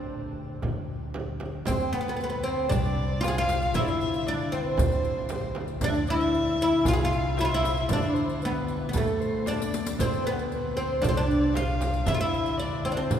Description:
Arabic maqam ensemble; 115 BPM; 4/4; straight; A4 = 440 Hz
oud; melody; 0.0-13.2 s; A3 to G#4; -27 LUFS; equal
upright bass; bass; 0.0-13.2 s; C2 to D3; -31 LUFS; equal
darbuka; percussion; 0.4-13.2 s; -35 LUFS; equal
frame drum; percussion; 0.6-13.2 s; -35 LUFS; right 3 dB
dark violin; second line; 1.7-13.2 s; A4 to G#5; -32 LUFS; left 2 dB
riq; percussion; 1.7-13.2 s; -41 LUFS; left 4 dB
wet cathedral reverb, RT60 5.3 s; recorded in a church or concert hall; -24 LUFS; side -9 dB against mid
0.0-1.7 A section; 1.7-13.2 B section
drum fill 9.5-10.0
0.11 0.63 1.15 | 1.67 2.19 2.71 3.23 | 3.75 4.27 4.79 5.31 | 5.83 6.35 6.87 7.39 | 7.91 8.43 8.95 9.47 | 9.99 10.51 11.03 11.55 | 12.07 12.59 13.11

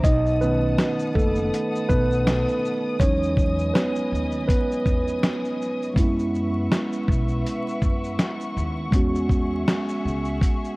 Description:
lo-fi hip hop; 81 BPM; 4/4; swing 55% on 16ths; A4 = 440 Hz
mellow tine electric piano; accompaniment; 0.0-10.8 s; D#3 to D#5; -24 LUFS; right 1 dB; medium stereo tremolo, cassette tape, low-pass filter
warm studio string section; sustained chords; 0.0-10.8 s; G#4 to D#6; -34 LUFS; left 2 dB; low-pass filter
upright bass; bass; 0.0-10.4 s; F#1 to F#2; -27 LUFS; equal; tube saturation
dusty soul sampler-style drum kit; drums; 0.0-10.8 s; hi-hat, kick drum, shaker, snare drum; -23 LUFS; equal
light reverb; worn, warbling old tape, cassette tape, vinyl crackle, warbly pitch drift; -20 LUFS; side -23 dB against mid
0.0-6.0 A section; 6.0-10.8 B section
tine electric piano solo 0.0-6.0
0.0 B7; 3.0 Emaj7; 6.0 F#7sus4; 8.9 E69
| 0.04 0.78 1.52 2.26 | 3.00 3.74 4.48 5.22 | 5.96 6.71 7.45 8.19 | 8.93 9.67 10.41

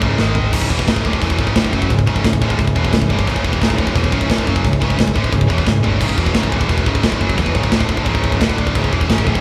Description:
heavy metal; 175 BPM; 4/4; straight; C# minor; A4 = 440 Hz
rich chamber string section; sustained chords; 0.0-9.4 s; D3 to D#5; -30 LUFS; equal
scooped high-gain guitar; riff; 0.0-9.4 s; C#2 to G#3; -25 LUFS; equal; distortion
scooped high-gain guitar; riff; 0.0-9.4 s; C#2 to G#3; -22 LUFS; equal; distortion
overdriven picked electric bass; bass; 0.0-9.4 s; C#1 to G#1; -23 LUFS; equal
tight metal drum kit; drums; 0.0-9.4 s; china cymbal, crash cymbal, kick drum, snare drum, splash cymbal, toms; -20 LUFS; equal
light reverb; band playing live in one room; -16 LUFS; mono
0.5-9.4 A section
drum fill 0.2-0.5, 5.7-6.0
0.0 C#m; 0.2 G#5; 0.5 C#m; 7.7 D5; 8.1 C#m; 8.4 D5; 8.7 C#m
0.19 | 0.53 0.87 1.22 1.56 | 1.90 2.24 2.58 2.93 | 3.27 3.61 3.96 4.30 | 4.64 4.98 5.33 5.67 | 6.01 6.35 6.70 7.04 | 7.38 7.72 8.06 8.41 | 8.75 9.09

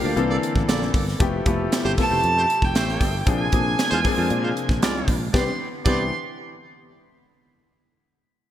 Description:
polished 1980s jazz-funk pop; 116 BPM; 4/4; straight; C major; A4 = 441 Hz
rich violin; melody; 0.0-6.1 s; F5 to C6; -25 LUFS; right 2 dB
warm horn section; second line; 0.0-6.0 s; Ab3 to D5; -30 LUFS; right 3 dB; digital delay
warm grand piano; accompaniment; 0.0-6.1 s; E3 to Bb4; -26 LUFS; left 4 dB; lush chorus
hollow soft pad; sustained chords; 0.0-5.6 s; B2 to A4; -34 LUFS; right 1 dB
sustaining fretless electric bass; bass; 0.0-6.1 s; F1 to Bb2; -26 LUFS; equal
crisp fusion drum kit; drums; 0.2-6.0 s; crash cymbal, hi-hat, kick drum, snare drum; -23 LUFS; equal; gated reverb
moderate lush hall reverb, RT60 1.9 s; bright 1980s-style digital production; -19 LUFS; side -11 dB against mid
0.0-5.3 A section; 5.3-7.4 B section
0.2 C13; 1.2 Fmaj9#11; 3.3 Bb9; 5.3 Cmaj9
0.17 0.68 | 1.20 1.72 2.24 2.75 | 3.27 3.79 4.31 4.82 | 5.34 5.86

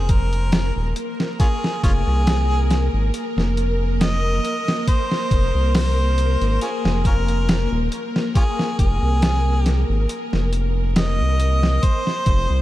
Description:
trip hop; 69 BPM; 4/4; swing 54% on 16ths; F minor; A4 = 440 Hz
warm harmonica; melody; 0.0-12.6 s; Db4 to Eb5; -26 LUFS; equal; tape echo
string machine, cellos; sustained chords; 0.0-12.6 s; Bb4 to C5; -27 LUFS; left 1 dB; ensemble chorus
round analog bass; bass; 0.0-12.6 s; Eb1 to C2; -19 LUFS; equal
boom bap sampler-style drum kit; drums; 0.1-12.5 s; hi-hat, kick drum, snare drum; -21 LUFS; equal
light reverb; vinyl crackle; -17 LUFS; side -15 dB against mid
0.0-12.6 A section
0.0 Fm
0.53 | 1.40 2.27 3.13 4.00 | 4.87 5.74 6.61 7.48 | 8.35 9.22 10.09 10.96 | 11.83

